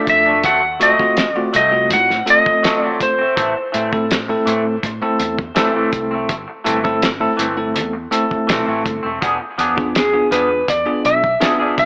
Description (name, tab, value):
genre	straight-eighth soul blues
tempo	82 BPM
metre	4/4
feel	straight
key	A minor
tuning	A4 = 442 Hz
part	clean lap steel guitar	melody	0.0-11.9 s	G#4 to F#5	-17 LUFS	equal	none
part	bell-like tine electric piano	accompaniment	0.0-11.9 s	A3 to A4	-22 LUFS	equal	none
part	electric guitar through a small old amp	stabs	0.0-11.8 s	E3 to G#4	-24 LUFS	equal	lush chorus, tape echo
part	vintage muted fingered electric bass	bass	0.1-11.9 s	E1 to A2	-33 LUFS	equal	none
part	cloth-damped thuddy drum kit	drums	0.1-11.9 s	hi-hat, kick drum, snare drum	-24 LUFS	equal	none
room	light reverb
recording	AM radio sound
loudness	-17 LUFS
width	mono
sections	0.0-11.9 A section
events	none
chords	0.4 D#dim7; 3.4 Am; 9.2 E7b9